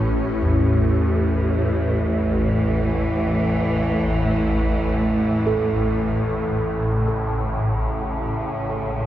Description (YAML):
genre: dark ambient drone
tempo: free time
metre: none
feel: none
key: A major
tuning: A4 = 439 Hz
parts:
  - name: rich symphonic cello section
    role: sustained chords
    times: 0.0-9.1 s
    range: A2 to C#4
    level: -23 LUFS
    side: equal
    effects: none
  - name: swarming drone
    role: drone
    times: 0.0-9.1 s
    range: A1 to A2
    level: -22 LUFS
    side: equal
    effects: built-in reverb
  - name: gamelan-type bossed gongs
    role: arpeggios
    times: 0.4-7.2 s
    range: E2 to A4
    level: -26 LUFS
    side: equal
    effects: ping-pong delay
room: wet huge ambient reverb, RT60 8.8 s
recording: worn, warbling old tape, cassette tape, warbly pitch drift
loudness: -19 LUFS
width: side -12 dB against mid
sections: 0.0-9.1 A section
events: none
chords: 0.0 A; 7.0 C#5